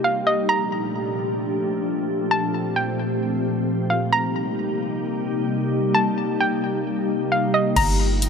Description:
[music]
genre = hip hop, atmospheric cloud-rap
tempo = 132 BPM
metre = 4/4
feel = half-time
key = G minor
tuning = A4 = 440 Hz
[part]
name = hollow square pluck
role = melody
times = 0.0-8.3 s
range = Eb5 to Bb5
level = -23 LUFS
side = equal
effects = chorus, low-pass filter, ping-pong delay
[part]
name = glassy FM pad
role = sustained chords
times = 0.0-8.3 s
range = Bb2 to G4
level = -22 LUFS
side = left 1 dB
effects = ensemble chorus, built-in reverb, sidechain pumping
[part]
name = soft 808-style bass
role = bass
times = 7.8-8.3 s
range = G1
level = -21 LUFS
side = equal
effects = none
[part]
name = trap drum kit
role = drums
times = 7.8-8.3 s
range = crash cymbal, hi-hat, kick drum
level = -24 LUFS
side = equal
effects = none
[sound]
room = moderate huge ambient reverb, RT60 4.1 s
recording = none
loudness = -20 LUFS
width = side -6 dB against mid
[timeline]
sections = 0.0-7.8 A section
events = none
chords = 0.5 Gm9; 4.1 Cm7; 7.8 Gm9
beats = 0.04 | 0.49 0.95 1.40 1.86 | 2.31 2.77 3.22 3.67 | 4.13 4.58 5.04 5.49 | 5.95 6.40 6.86 7.31 | 7.76 8.22

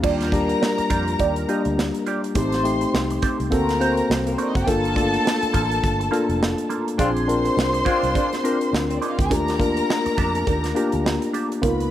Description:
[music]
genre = lush 1970s-style soul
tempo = 104 BPM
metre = 4/4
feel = swing 58% on 16ths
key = unclear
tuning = A4 = 440 Hz
[part]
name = warm studio violin section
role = second line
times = 0.0-11.9 s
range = Bb3 to C6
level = -26 LUFS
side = left 1 dB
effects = analog delay
[part]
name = tine electric piano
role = accompaniment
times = 0.0-11.9 s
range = G3 to C5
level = -23 LUFS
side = left 3 dB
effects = none
[part]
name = mellow electric guitar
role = riff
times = 0.0-11.9 s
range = Bb3 to Eb5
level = -29 LUFS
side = right 7 dB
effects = wah, spring reverb
[part]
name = vintage muted fingered electric bass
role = bass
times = 0.0-11.9 s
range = F1 to F2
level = -27 LUFS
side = right 1 dB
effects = none
[part]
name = modern studio drum kit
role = drums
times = 0.0-11.9 s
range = crash cymbal, hi-hat, kick drum, snare drum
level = -26 LUFS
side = right 1 dB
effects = none
[part]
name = warm horn section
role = stabs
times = 7.0-8.3 s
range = C4 to F4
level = -27 LUFS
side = left 3 dB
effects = none
[sound]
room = light reverb, studio reverb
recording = none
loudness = -19 LUFS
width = side -12 dB against mid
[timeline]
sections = 0.0-11.9 A section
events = band accent 7.0-9.3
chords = 0.0 Ebmaj9; 2.4 Am7b5; 3.5 D7b13; 4.7 Gm9; 7.0 Bb9; 9.3 Ebmaj9#11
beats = | 0.04 0.62 1.20 1.78 | 2.35 2.94 3.51 4.09 | 4.67 5.25 5.83 6.41 | 6.99 7.57 8.15 8.73 | 9.31 9.89 10.47 11.05 | 11.63

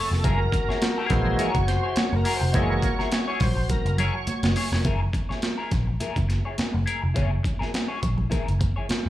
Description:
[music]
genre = funk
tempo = 104 BPM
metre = 4/4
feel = swing 56% on 16ths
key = F# mixolydian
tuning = A4 = 440 Hz
[part]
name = electric guitar at the edge of break-up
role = accompaniment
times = 0.0-8.9 s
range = E4 to C#5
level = -31 LUFS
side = left 3 dB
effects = wah, wide subtle chorus, slapback echo
[part]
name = bright tonewheel organ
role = stabs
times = 0.0-4.8 s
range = E3 to C#5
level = -28 LUFS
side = right 2 dB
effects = overdrive, chorus vibrato, slow rotary speaker, slapback echo
[part]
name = vintage muted picked electric bass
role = bass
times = 0.1-9.1 s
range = E#1 to A#1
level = -25 LUFS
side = equal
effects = tube saturation
[part]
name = breakbeat sampler-style drum kit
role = drums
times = 0.1-9.1 s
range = hi-hat, kick drum, snare drum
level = -26 LUFS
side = equal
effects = overdrive
[part]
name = clear trombone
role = second line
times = 0.2-4.5 s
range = F#4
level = -32 LUFS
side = left 2 dB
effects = slapback echo
[part]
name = congas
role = percussion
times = 0.2-9.1 s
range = none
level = -33 LUFS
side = right 2 dB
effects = slapback echo
[sound]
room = little or no reverb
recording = live gig heard through the venue's PA, club reverb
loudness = -22 LUFS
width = side -14 dB against mid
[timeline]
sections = 0.0-4.8 A section; 4.8-9.1 B section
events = tonewheel organ solo 0.0-4.8; drum fill 3.7-4.8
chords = 0.0 F#9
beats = | 0.24 0.82 1.39 1.97 | 2.54 3.12 3.70 4.27 | 4.85 5.43 6.00 6.58 | 7.16 7.74 8.32 8.90

